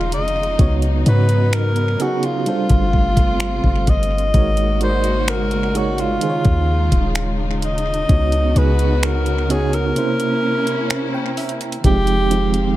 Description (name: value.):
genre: contemporary R&B.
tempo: 64 BPM.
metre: 4/4.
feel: straight.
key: unclear.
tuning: A4 = 440 Hz.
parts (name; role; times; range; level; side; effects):
breathy alto saxophone; melody; 0.0-12.7 s; F4 to Eb5; -22 LUFS; equal; tape echo.
FM electric piano with tremolo; accompaniment; 0.0-12.8 s; C3 to Bb5; -22 LUFS; right 4 dB; tape echo.
warm studio string section; sustained chords; 0.0-12.8 s; C3 to F5; -26 LUFS; left 2 dB; none.
warm 808-style bass; bass; 0.0-12.8 s; Eb1 to Ab2; -19 LUFS; equal; none.
trap drum kit; drums; 0.1-12.8 s; finger snaps, hi-hat, kick drum; -19 LUFS; equal; none.
room: digital ambience.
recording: echo-heavy mix.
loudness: -15 LUFS.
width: side -15 dB against mid.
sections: 0.0-11.8 A section.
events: break 10.0-11.8; FM electric piano fill 10.4-11.8.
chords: 0.0 Eb9sus4; 0.6 Db9sus4; 2.5 G9sus4; 4.3 Ab9sus4; 6.2 Eb9sus4; 8.1 Db9sus4; 10.0 C7b9; 11.8 Fm9.